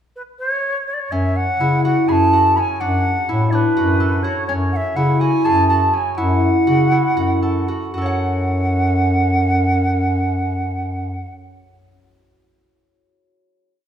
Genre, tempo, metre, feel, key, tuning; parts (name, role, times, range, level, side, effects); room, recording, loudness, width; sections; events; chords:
contemporary instrumental, chamber music in an uneven meter; 244 BPM (eighths); 7/8; uneven beats; F# minor; A4 = 440 Hz
bright wooden flute; melody; 0.2-11.3 s; B4 to B5; -20 LUFS; right 1 dB
concert harp; arpeggios; 1.1-11.4 s; C#4 to F#5; -20 LUFS; equal
mellow bass clarinet; bass; 1.1-11.3 s; F#2 to C#3; -19 LUFS; equal
moderate recital hall reverb, RT60 1.6 s; minimal, uncompressed stereo recording; -15 LUFS; side -9 dB against mid
0.0-1.1 pickup bar; 1.1-7.9 A section; 7.9-11.5 final chord
slowing down 4.5-7.9
0.0 N.C.; 1.1 F#madd9; 2.8 D/F#; 4.5 F#sus2; 7.9 F#m